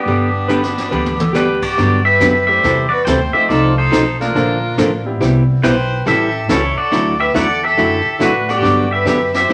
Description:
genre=country, western swing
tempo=140 BPM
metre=4/4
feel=swing 65% on 8ths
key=G major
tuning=A4 = 440 Hz
part: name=pedal steel guitar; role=melody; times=0.0-9.5 s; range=B3 to G5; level=-19 LUFS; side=equal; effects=none
part: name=rich fiddle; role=second line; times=0.0-9.5 s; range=D4 to D5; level=-24 LUFS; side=equal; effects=none
part: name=bright upright piano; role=accompaniment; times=0.0-5.6, 8.5-9.0 s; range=F3 to F#5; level=-28 LUFS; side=equal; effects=none
part: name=archtop guitar, miked and amplified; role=accompaniment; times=0.1-9.5 s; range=C3 to A4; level=-20 LUFS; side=equal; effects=none
part: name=upright bass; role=bass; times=0.1-9.5 s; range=G1 to A2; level=-22 LUFS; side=equal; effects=none
part: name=jazz brush drum kit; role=drums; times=0.1-9.5 s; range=brushed snare drum, crash cymbal, hi-hat, kick drum, snare drum, toms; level=-27 LUFS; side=equal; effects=none
part: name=clean lap steel guitar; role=second line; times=0.5-1.7 s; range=G4 to B4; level=-23 LUFS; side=equal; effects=none
room=wet studio reverb, RT60 0.7 s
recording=vinyl crackle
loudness=-15 LUFS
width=mono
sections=0.0-1.8 A section; 1.8-9.5 B section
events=drum fill 0.5-1.3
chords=0.1 G; 1.8 Gmaj7; 2.6 C6; 3.5 F7; 4.3 Bbmaj7; 5.2 Cmaj7; 6.1 A7; 6.9 Dadd9; 8.6 Gmaj7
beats=| 0.06 0.49 0.92 1.35 | 1.78 2.20 2.63 3.06 | 3.49 3.92 4.35 4.78 | 5.21 5.63 6.06 6.49 | 6.92 7.35 7.78 8.21 | 8.63 9.06 9.49

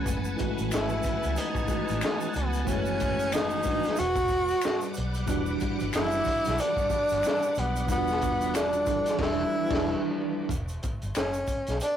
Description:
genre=R&B, neo-soul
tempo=92 BPM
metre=4/4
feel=swing 59% on 16ths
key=E dorian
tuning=A4 = 440 Hz
part: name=mellow tine electric piano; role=accompaniment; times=0.0-10.5 s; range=E3 to A4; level=-31 LUFS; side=right 1 dB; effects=medium stereo tremolo
part: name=string machine, full ensemble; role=sustained chords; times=0.0-10.5 s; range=G3 to D6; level=-36 LUFS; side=left 1 dB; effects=ensemble chorus
part: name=vintage muted fingered electric bass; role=bass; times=0.1-11.8 s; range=E1 to C#2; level=-33 LUFS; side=equal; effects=none
part: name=crunchy breakbeat drum kit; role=drums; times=0.1-12.0 s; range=crash cymbal, hi-hat, kick drum, snare drum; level=-32 LUFS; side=equal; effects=none
part: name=egg shaker and finger snaps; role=percussion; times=0.1-12.0 s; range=none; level=-41 LUFS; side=equal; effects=none
part: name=breathy tenor saxophone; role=melody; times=0.7-12.0 s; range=B3 to F#4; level=-28 LUFS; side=equal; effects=none
room=moderate small room ambience, RT60 0.5 s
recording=rough rehearsal-room recording, warm saturation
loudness=-25 LUFS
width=side -9 dB against mid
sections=0.0-10.5 A section; 10.5-12.0 B section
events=band accent 9.2-10.5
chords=0.0 F#m9; 4.0 Em9; 10.5 Emadd9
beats=| 0.06 0.71 1.36 2.02 | 2.67 3.32 3.97 4.62 | 5.28 5.93 6.58 7.23 | 7.89 8.54 9.19 9.84 | 10.49 11.15 11.80

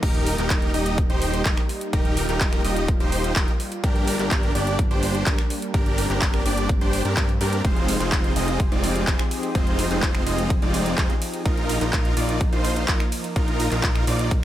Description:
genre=EDM, festival progressive house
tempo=126 BPM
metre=4/4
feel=straight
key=Eb major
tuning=A4 = 438 Hz
part: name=lush unison pad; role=sustained chords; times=0.0-14.4 s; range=F3 to Ab4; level=-30 LUFS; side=equal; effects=chorus, sidechain pumping
part: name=big supersaw lead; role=riff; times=0.0-14.3 s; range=Ab3 to Eb5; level=-26 LUFS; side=right 1 dB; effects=sidechain pumping, dub echo
part: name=fat analog bass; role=bass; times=0.0-14.4 s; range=Eb1 to G2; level=-27 LUFS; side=equal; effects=sidechain pumping
part: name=big-room dance drum kit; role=drums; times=0.0-14.4 s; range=crash cymbal, finger snaps, handclaps, hi-hat, ride cymbal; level=-30 LUFS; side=equal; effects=overdrive
part: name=electronic kick drum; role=drums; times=0.0-14.4 s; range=none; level=-22 LUFS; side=equal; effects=overdrive
room=little or no reverb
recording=none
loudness=-20 LUFS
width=side -12 dB against mid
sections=0.0-14.4 A section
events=none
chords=0.0 Eb; 3.8 Gm; 7.6 Fm7; 11.5 Bbsus4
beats=| 0.03 0.50 0.98 1.46 | 1.93 2.41 2.88 3.36 | 3.84 4.31 4.79 5.26 | 5.74 6.22 6.69 7.17 | 7.65 8.12 8.60 9.07 | 9.55 10.03 10.50 10.98 | 11.46 11.93 12.41 12.88 | 13.36 13.84 14.31

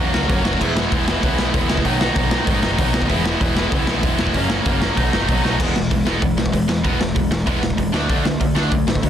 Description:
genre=punk rock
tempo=192 BPM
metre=4/4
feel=straight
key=E lydian, E mixolydian from 5.6 s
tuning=A4 = 439 Hz
part: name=cranked stack guitar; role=riff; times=0.0-9.1 s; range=F#2 to F#4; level=-20 LUFS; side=equal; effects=overdrive
part: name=growling picked electric bass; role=bass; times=0.0-9.1 s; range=E1 to A2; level=-24 LUFS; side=equal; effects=overdrive
part: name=raw garage drum kit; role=drums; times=0.1-9.1 s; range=crash cymbal, hi-hat, kick drum, snare drum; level=-20 LUFS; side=equal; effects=none
room=little or no reverb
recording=dense, heavily limited modern master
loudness=-16 LUFS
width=side -10 dB against mid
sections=0.0-5.6 A section; 5.6-9.1 B section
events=drum fill 5.4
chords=0.0 F#; 0.6 E; 1.9 B; 3.1 E; 4.3 F#; 5.0 B7; 5.6 E; 7.9 D5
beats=0.29 | 0.60 0.92 1.23 1.54 | 1.85 2.16 2.48 2.79 | 3.10 3.41 3.72 4.04 | 4.35 4.66 4.97 5.28 | 5.60 5.91 6.22 6.53 | 6.85 7.16 7.47 7.78 | 8.10 8.41 8.72 9.03

